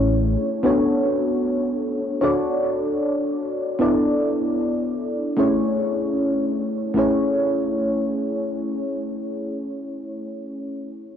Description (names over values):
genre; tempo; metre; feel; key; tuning
vaporwave; 76 BPM; 4/4; straight; A major; A4 = 441 Hz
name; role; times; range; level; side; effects
mellow FM electric piano; accompaniment; 0.0-11.2 s; A3 to D5; -20 LUFS; equal; analog chorus, analog delay
room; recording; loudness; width
moderate huge ambient reverb, RT60 8.1 s; worn, warbling old tape, cassette tape, warbly pitch drift; -20 LUFS; side -8 dB against mid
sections
0.0-7.0 A section; 7.0-10.1 B section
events
none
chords
0.0 Amaj7; 0.6 Bm9; 2.2 Dmaj7; 3.8 E7sus4; 5.4 Amaj7